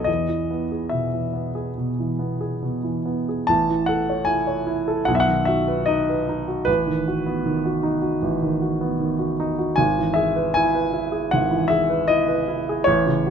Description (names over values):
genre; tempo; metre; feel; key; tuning
classical, romantic character piece for solo piano; 68-79 BPM; 4/4; rubato; E major; A4 = 440 Hz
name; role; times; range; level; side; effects
warm grand piano; solo; 0.0-13.3 s; G#1 to A5; -20 LUFS; equal; none
room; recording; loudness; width
little or no reverb; close, detailed microphones; -20 LUFS; side -7 dB against mid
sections
0.0-3.5 A section; 3.5-13.3 B section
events
none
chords
0.1 E; 3.5 A; 5.1 B; 6.7 B7/A; 9.8 E/G#